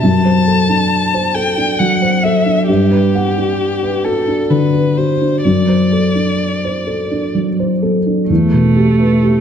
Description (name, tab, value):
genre	neoclassical piano and strings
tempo	63-69 BPM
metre	3/4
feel	rubato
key	unclear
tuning	A4 = 440 Hz
part	warm violin	melody	0.0-7.3 s	G4 to A5	-18 LUFS	left 3 dB	none
part	felt-muted upright piano	accompaniment	0.0-9.4 s	E2 to F#5	-13 LUFS	equal	none
part	warm cello	second line	8.3-9.4 s	A3	-13 LUFS	right 2 dB	none
room	wet scoring stage reverb, RT60 1.7 s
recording	dark, warm production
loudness	-12 LUFS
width	side -8 dB against mid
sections	0.0-8.3 A section; 8.3-9.4 B section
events	none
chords	0.0 D7/F#; 2.7 Gmaj7; 5.4 D7/F#; 8.3 Em